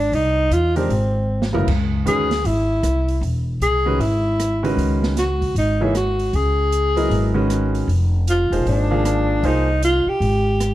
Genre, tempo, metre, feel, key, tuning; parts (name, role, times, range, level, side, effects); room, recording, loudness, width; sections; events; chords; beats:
modal jazz; 155 BPM; 4/4; swing 63% on 8ths; A4 = 440 Hz
mellow tenor saxophone; melody; 0.0-10.7 s; C4 to Ab4; -20 LUFS; equal
upright bass; bass; 0.0-10.7 s; Fb1 to E2; -20 LUFS; equal
open jazz drum kit; drums; 0.1-10.7 s; crash cymbal, hi-hat, kick drum, rim click, snare drum, toms; -28 LUFS; right 1 dB
clear grand piano; accompaniment; 0.8-9.7 s; Db3 to F5; -23 LUFS; right 1 dB
light reverb; dark, warm production; -17 LUFS; side -14 dB against mid
0.0-10.7 A section
drum fill 1.3-1.7
0.0 Fm7 (rootless); 1.7 Dbm9; 7.9 Fm9
| 0.12 0.51 0.90 1.29 | 1.68 2.06 2.45 2.84 | 3.23 3.62 4.00 4.39 | 4.78 5.17 5.56 5.94 | 6.33 6.72 7.11 7.50 | 7.88 8.27 8.66 9.05 | 9.44 9.82 10.21 10.60